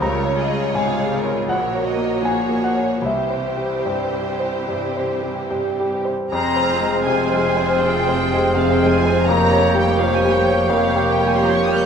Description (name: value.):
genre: classical, romantic movement for piano and orchestra.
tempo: 72-85 BPM.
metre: 4/4.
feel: rubato.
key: F minor.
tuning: A4 = 440 Hz.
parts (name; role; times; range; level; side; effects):
bright concert grand piano; melody; 0.0-11.9 s; Bb1 to Bb5; -21 LUFS; left 2 dB; none.
rich symphonic violin section; melody; 0.0-11.9 s; Ab4 to G6; -26 LUFS; left 2 dB; none.
rich symphonic violin section; second line; 0.0-11.9 s; G4 to Db5; -27 LUFS; equal; none.
rich symphonic viola section; accompaniment; 0.0-11.9 s; E3 to G4; -26 LUFS; right 3 dB; none.
rich studio cello section; bass; 0.0-11.9 s; F2 to Db3; -27 LUFS; right 2 dB; none.
rich symphonic double bass section; bass; 0.0-11.9 s; F1 to Db2; -29 LUFS; right 3 dB; none.
clear oboe; second line; 6.3-11.9 s; C5 to Db5; -27 LUFS; right 1 dB; none.
mellow clarinet; second line; 6.3-11.9 s; G4 to Ab4; -28 LUFS; right 2 dB; none.
mellow large flute ensemble; second line; 6.3-11.9 s; F6 to G6; -28 LUFS; right 4 dB; none.
warm bassoon; accompaniment; 6.3-11.9 s; Bb3 to C4; -24 LUFS; right 2 dB; none.
mellow French horn section; sustained chords; 7.8-11.9 s; F4 to C5; -24 LUFS; left 1 dB; none.
room: moderate scoring stage reverb, RT60 1.8 s.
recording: minimal, uncompressed stereo recording.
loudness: -16 LUFS.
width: side -7 dB against mid.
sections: 0.0-6.3 A section; 6.3-11.9 A section.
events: none.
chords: 0.0 Db; 1.5 Gb/Bb; 3.0 C; 6.3 Fm; 9.3 Gm7b5/F.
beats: | 0.02 0.76 1.49 2.25 | 3.05 3.87 4.69 5.51 | 6.32 7.05 7.80 8.55 | 9.27 9.99 10.71 11.42.